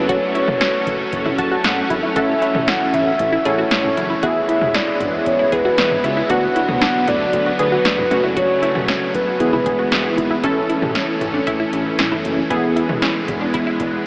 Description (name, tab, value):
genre	synth-pop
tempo	116 BPM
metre	4/4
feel	straight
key	A major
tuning	A4 = 440 Hz
part	soft octave-layered synth lead	melody	0.0-10.1 s	B4 to F#5	-20 LUFS	equal	chorus, phaser, analog delay
part	warm analog keys	accompaniment	0.0-14.1 s	A3 to A5	-22 LUFS	equal	chorus
part	string machine, full ensemble	sustained chords	0.0-14.1 s	C#3 to C#4	-23 LUFS	equal	phaser, ensemble chorus
part	wide unison pluck	arpeggios	0.0-13.8 s	B3 to G#4	-24 LUFS	equal	analog delay
part	fat analog bass	bass	0.0-14.0 s	E1 to D2	-26 LUFS	equal	none
part	electro analog drum machine	drums	0.1-13.9 s	hi-hat, kick drum, snare drum, toms	-23 LUFS	equal	none
room	wet huge ambient reverb, RT60 7.8 s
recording	dreamy mix soaked in reverb, AM radio sound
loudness	-15 LUFS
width	side -29 dB against mid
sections	0.0-10.4 A section; 10.4-14.1 B section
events	synth keys fill 1.1-2.2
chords	0.0 F#m; 4.2 E; 6.3 Bm/D; 8.1 F#m; 9.4 E; 10.4 A; 12.5 E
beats	| 0.09 0.61 1.13 1.64 | 2.16 2.68 3.19 3.71 | 4.23 4.75 5.26 5.78 | 6.30 6.82 7.33 7.85 | 8.37 8.88 9.40 9.92 | 10.44 10.95 11.47 11.99 | 12.51 13.02 13.54 14.06